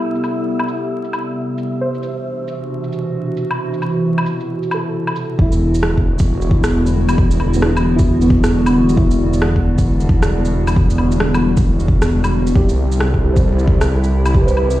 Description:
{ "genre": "future garage", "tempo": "134 BPM", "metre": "4/4", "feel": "swing 62% on 16ths", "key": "E minor", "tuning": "A4 = 440 Hz", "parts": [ { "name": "muted felt-like synth keys", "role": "accompaniment", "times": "0.0-14.8 s", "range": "B3 to C5", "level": "-23 LUFS", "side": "right 2 dB", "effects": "chorus, vintage 12-bit sampler grit, sidechain pumping, analog delay" }, { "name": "warbly tape-like pad", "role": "sustained chords", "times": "0.0-14.8 s", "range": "B2 to G4", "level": "-20 LUFS", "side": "equal", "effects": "chorus, built-in reverb, phaser, sidechain pumping" }, { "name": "wind-like tuned noise texture", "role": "texture", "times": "0.0-5.4 s", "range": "E5", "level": "-33 LUFS", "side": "equal", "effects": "built-in reverb" }, { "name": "electronic shaker, woodblock and rim click", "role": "drums", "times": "0.2-14.8 s", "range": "none", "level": "-24 LUFS", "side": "equal", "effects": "low-pass filter on perc, small room reverb, low-pass filter on snare" }, { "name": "swelling detuned saw bass", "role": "bass", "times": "5.4-14.8 s", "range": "E1 to C2", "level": "-16 LUFS", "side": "equal", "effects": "sidechain pumping" }, { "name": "electronic kick drum", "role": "drums", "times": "5.4-14.5 s", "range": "none", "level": "-15 LUFS", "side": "equal", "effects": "small room reverb" } ], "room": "light reverb", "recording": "played on a big sound system in a bare room, large studio reverb, vinyl crackle", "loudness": "-14 LUFS", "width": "side -15 dB against mid", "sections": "0.0-5.4 A section; 5.4-14.8 B section", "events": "none", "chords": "0.0 Cmaj7; 1.8 D13; 5.4 Em9; 12.6 Cmaj7" }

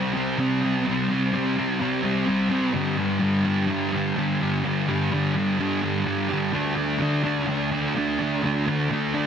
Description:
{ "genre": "rock", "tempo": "127 BPM", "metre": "4/4", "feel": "straight", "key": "unclear", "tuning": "A4 = 440 Hz", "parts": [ { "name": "thick fuzz guitar", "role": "solo", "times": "0.0-9.3 s", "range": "G2 to D4", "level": "-21 LUFS", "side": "equal", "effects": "distortion, wide subtle chorus, tape echo" } ], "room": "moderate huge ambient reverb, RT60 5.0 s", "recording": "dense, heavily limited modern master", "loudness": "-21 LUFS", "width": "side -8 dB against mid", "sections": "0.0-9.3 A section", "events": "none", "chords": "0.0 C5; 2.7 G5; 6.5 D5" }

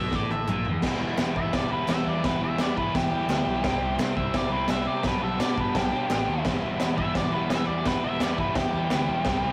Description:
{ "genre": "garage rock duo or trio", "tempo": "171 BPM", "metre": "4/4", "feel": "straight", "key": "E minor", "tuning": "A4 = 440 Hz", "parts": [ { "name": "octave-fuzz lead guitar", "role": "melody", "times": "0.0-9.5 s", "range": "G4 to E5", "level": "-32 LUFS", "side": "equal", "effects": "distortion" }, { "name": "crunchy overdriven guitar", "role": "riff", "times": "0.0-9.5 s", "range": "E2 to E4", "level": "-31 LUFS", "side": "equal", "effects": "spring reverb" }, { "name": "picked electric bass", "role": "bass", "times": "0.0-9.5 s", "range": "E1 to C3", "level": "-36 LUFS", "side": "equal", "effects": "none" }, { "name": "crunchy breakbeat drum kit", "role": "drums", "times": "0.1-9.3 s", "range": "crash cymbal, kick drum, snare drum, toms", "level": "-30 LUFS", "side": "equal", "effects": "none" }, { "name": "group handclap", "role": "percussion", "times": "0.3-9.0 s", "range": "none", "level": "-44 LUFS", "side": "equal", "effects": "none" } ], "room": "moderate small room ambience, RT60 0.5 s", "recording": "rough rehearsal-room recording, warm saturation", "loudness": "-26 LUFS", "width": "mono", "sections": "0.8-9.5 A section", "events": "drum fill 0.1-0.8", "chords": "0.0 E5; 0.8 Em; 3.6 C; 5.0 G/B; 6.4 Em" }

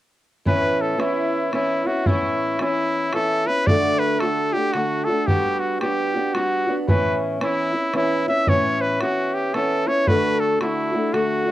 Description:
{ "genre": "celtic folk, Celtic waltz", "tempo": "112 BPM", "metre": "3/4", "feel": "swing 61% on 8ths", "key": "A mixolydian", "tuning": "A4 = 440 Hz", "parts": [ { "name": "clear trumpet", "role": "melody", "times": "0.5-11.5 s", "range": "E4 to E5", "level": "-22 LUFS", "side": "equal", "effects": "cassette tape" }, { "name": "fingerpicked steel-string acoustic guitar", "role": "accompaniment", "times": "0.5-11.5 s", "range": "A2 to F#4", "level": "-22 LUFS", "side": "equal", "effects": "none" }, { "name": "bodhran", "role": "percussion", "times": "0.5-11.3 s", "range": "none", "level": "-23 LUFS", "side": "equal", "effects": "none" } ], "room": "light reverb", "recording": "home recording on cassette", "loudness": "-19 LUFS", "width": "side -14 dB against mid", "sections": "0.5-11.5 A section", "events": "none", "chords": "0.5 Aadd9; 3.7 D; 5.3 Gmaj7; 6.9 Aadd9; 10.1 D" }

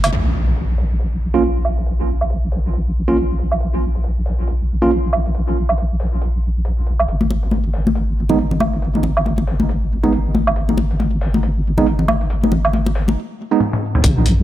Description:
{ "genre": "deep dubstep", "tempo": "138 BPM", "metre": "4/4", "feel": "swing 59% on 16ths, half-time", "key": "unclear", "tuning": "A4 = 440 Hz", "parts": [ { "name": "deep soft wobble bass", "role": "bass", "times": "0.0-14.4 s", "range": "Gb1 to Bb1", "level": "-18 LUFS", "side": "equal", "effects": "chorus" }, { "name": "trip hop sampler-style drum kit", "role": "drums", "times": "0.0-14.4 s", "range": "hi-hat, toms, woodblock", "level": "-22 LUFS", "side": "right 2 dB", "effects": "low-pass filter on snare, low-pass filter on hats, low-pass filter on perc, low-pass filter on toms, low-pass filter on room" }, { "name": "impact and sub drop", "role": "sound effects", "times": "0.1-1.9, 14.0-14.4 s", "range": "none", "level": "-22 LUFS", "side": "equal", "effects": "none" }, { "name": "bright tine electric piano", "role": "stabs", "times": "1.3-4.9, 8.3-13.6 s", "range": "Ab3 to F4", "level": "-20 LUFS", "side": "right 4 dB", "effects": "medium stereo tremolo, low-pass filter, dub echo" }, { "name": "congas", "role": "percussion", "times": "7.2-13.2 s", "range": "none", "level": "-21 LUFS", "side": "left 3 dB", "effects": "dub echo" }, { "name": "electronic kick drum", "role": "drums", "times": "14.0-14.1 s", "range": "none", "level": "-17 LUFS", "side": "equal", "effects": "none" } ], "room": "light reverb, digital ambience", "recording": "none", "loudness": "-16 LUFS", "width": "side -13 dB against mid", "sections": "0.1-14.0 A section", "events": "impact 0.1-1.9, 14.0-14.4; drum fill 13.6-14.0", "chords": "none" }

